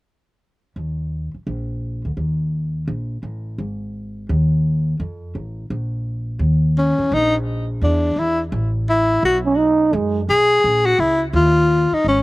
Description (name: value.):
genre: jazz, small-group swing and bop.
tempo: 170 BPM.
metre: 4/4.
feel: swing 64% on 8ths.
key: Eb minor.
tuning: A4 = 440 Hz.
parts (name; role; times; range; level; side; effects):
upright bass; bass; 0.8-12.2 s; Ab1 to F#2; -21 LUFS; equal; none.
breathy tenor saxophone; melody; 6.8-12.2 s; Db4 to G#4; -16 LUFS; left 1 dB; slapback echo.
growling trombone; second line; 9.5-10.2 s; G#3 to D#4; -16 LUFS; right 3 dB; slapback echo.
room: little or no reverb.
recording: recorded outdoors, with no room sound.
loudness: -16 LUFS.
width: side -20 dB against mid.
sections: 0.8-6.4 A section; 6.4-12.2 B section.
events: none.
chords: 0.8 Eb5; 3.6 Ab5; 5.0 F; 5.7 N.C.; 6.4 Eb5; 7.8 Dsus2/E; 8.5 A5; 9.2 B6; 10.6 Bbdim; 11.3 Ebsus2.